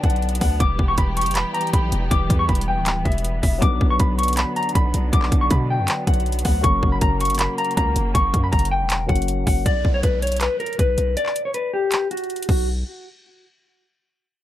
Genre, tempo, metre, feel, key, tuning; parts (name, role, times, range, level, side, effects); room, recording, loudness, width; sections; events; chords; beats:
hip hop, trap; 159 BPM; 4/4; half-time; B harmonic minor; A4 = 441 Hz
mellow electric guitar; melody; 0.0-12.7 s; F#4 to D6; -23 LUFS; left 2 dB; low-pass filter, digital delay
muted studio string section; sustained chords; 0.0-9.6 s; C#3 to G4; -29 LUFS; right 1 dB
hard-hitting 808-style bass; bass; 0.0-12.8 s; D1 to B2; -22 LUFS; equal
trap drum kit; drums; 0.0-12.6 s; crash cymbal, handclaps, hi-hat, kick drum; -21 LUFS; equal
dark grand piano; accompaniment; 3.6-9.7 s; F#3 to B4; -29 LUFS; left 4 dB
downlifter; sound effects; 9.7-12.7 s; -41 LUFS; equal
light reverb; -18 LUFS; side -13 dB against mid
0.0-9.7 A section; 9.7-12.7 B section; 12.7-14.2 C section
filter sweep on clean electric guitar 9.7-12.7; break 11.2-12.7
0.0 Bm; 0.6 Em; 3.6 Bm; 6.6 F#; 9.7 B5; 12.7 N.C.
0.22 | 0.60 0.98 1.36 1.73 | 2.11 2.49 2.87 3.24 | 3.62 4.00 4.38 4.75 | 5.13 5.51 5.88 6.26 | 6.64 7.02 7.39 7.77 | 8.15 8.53 8.90 9.28 | 9.66 10.04 10.41 10.79 | 11.17 11.54 11.92 12.30 | 12.68